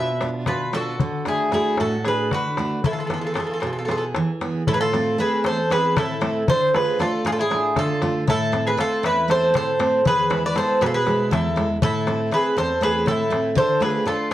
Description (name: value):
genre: greek folk, Greek bouzouki band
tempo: 234 BPM (eighths)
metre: 7/8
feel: straight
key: A harmonic minor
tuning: A4 = 440 Hz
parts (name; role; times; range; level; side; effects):
- Greek bouzouki; melody; 0.0-14.3 s; G#4 to E5; -22 LUFS; right 1 dB; plate reverb
- mandolin; second line; 0.0-14.3 s; E4 to B4; -27 LUFS; left 2 dB; none
- picked steel-string acoustic guitar; accompaniment; 0.0-14.3 s; E2 to G#4; -25 LUFS; right 2 dB; none
- darbuka; percussion; 0.2-14.3 s; none; -26 LUFS; left 4 dB; none
room: moderate studio reverb, RT60 0.6 s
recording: worn, warbling old tape, cassette tape, warbly pitch drift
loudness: -19 LUFS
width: side -13 dB against mid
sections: 0.0-4.7 A section; 4.7-14.3 B section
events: speeding up 0.0-14.3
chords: 0.0 Bdim; 1.0 D; 2.8 E; 4.7 Am; 6.5 Dm; 8.3 Am; 10.1 E; 11.8 Am; 13.6 Dm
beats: 0.21 0.47 0.74 | 1.00 1.27 1.53 1.79 2.06 2.32 2.58 | 2.85 3.11 3.37 3.63 3.89 4.15 4.41 | 4.67 4.93 5.19 5.45 5.71 5.97 6.23 | 6.49 6.74 7.00 7.26 7.51 7.77 8.03 | 8.28 8.54 8.79 9.04 9.30 9.55 9.80 | 10.06 10.31 10.56 10.81 11.07 11.32 11.57 | 11.82 12.07 12.32 12.57 12.82 13.07 13.32 | 13.56 13.81 14.06 14.31